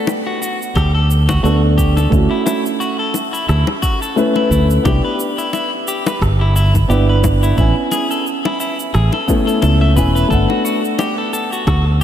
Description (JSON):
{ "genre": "sunset chillout", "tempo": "88 BPM", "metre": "4/4", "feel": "swing 56% on 16ths", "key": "G major", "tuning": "A4 = 440 Hz", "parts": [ { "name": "dark grand piano", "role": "accompaniment", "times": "0.0-12.0 s", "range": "A3 to G#5", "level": "-19 LUFS", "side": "moving between left 3 dB and right 5 dB", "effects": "auto-pan, tape echo" }, { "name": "clean electric guitar", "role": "arpeggios", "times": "0.0-12.0 s", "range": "E4 to E5", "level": "-21 LUFS", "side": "left 2 dB", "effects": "vintage 12-bit sampler grit, tape echo" }, { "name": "electronic shaker and rim click", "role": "drums", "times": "0.1-11.8 s", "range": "none", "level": "-28 LUFS", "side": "right 1 dB", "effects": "studio ambience" }, { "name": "bongos", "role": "percussion", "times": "0.1-11.8 s", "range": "none", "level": "-26 LUFS", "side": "left 4 dB", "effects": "none" }, { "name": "fingered electric bass", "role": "bass", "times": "0.8-12.0 s", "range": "E1 to D2", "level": "-13 LUFS", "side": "equal", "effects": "none" }, { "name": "electronic kick drum", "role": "drums", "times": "0.8-11.8 s", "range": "none", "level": "-19 LUFS", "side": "equal", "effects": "studio ambience" } ], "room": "moderate lush hall reverb, RT60 2.5 s", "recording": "dreamy mix soaked in reverb", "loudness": "-13 LUFS", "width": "side -10 dB against mid", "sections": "0.0-12.0 A section", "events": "none", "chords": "0.0 Gmaj9; 2.1 Dmaj9; 4.9 Cmaj9 (rootless); 7.6 Amaj9; 10.3 Gmaj9", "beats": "0.08 0.76 1.44 | 2.13 2.81 3.49 4.17 | 4.85 5.54 6.22 6.90 | 7.58 8.26 8.94 9.63 | 10.31 10.99 11.67" }